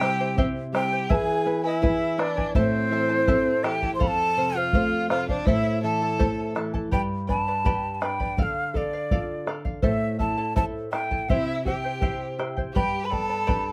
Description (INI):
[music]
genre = andean folk, Andean ensemble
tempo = 82 BPM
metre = 2/4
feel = straight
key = A minor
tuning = A4 = 440 Hz
[part]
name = mellow quena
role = melody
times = 0.0-13.7 s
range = C5 to C6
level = -29 LUFS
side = equal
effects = none
[part]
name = bright violin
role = second line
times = 0.0-6.5, 11.3-13.7 s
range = C4 to C5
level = -34 LUFS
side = equal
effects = none
[part]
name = charango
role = accompaniment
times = 0.0-13.7 s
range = E4 to B5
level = -32 LUFS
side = equal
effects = none
[part]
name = nylon-string guitar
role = accompaniment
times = 0.0-13.7 s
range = F2 to C5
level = -32 LUFS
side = equal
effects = none
[part]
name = bombo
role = percussion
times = 0.0-13.7 s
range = none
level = -29 LUFS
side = equal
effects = none
[sound]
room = little or no reverb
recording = close, detailed microphones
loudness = -25 LUFS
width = mono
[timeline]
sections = 0.0-6.9 A section; 6.9-13.7 B section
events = none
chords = 0.0 C; 1.1 E; 2.5 Am; 4.0 F; 5.5 Am; 6.9 G; 8.4 Dm; 9.8 Am; 11.3 C; 12.8 G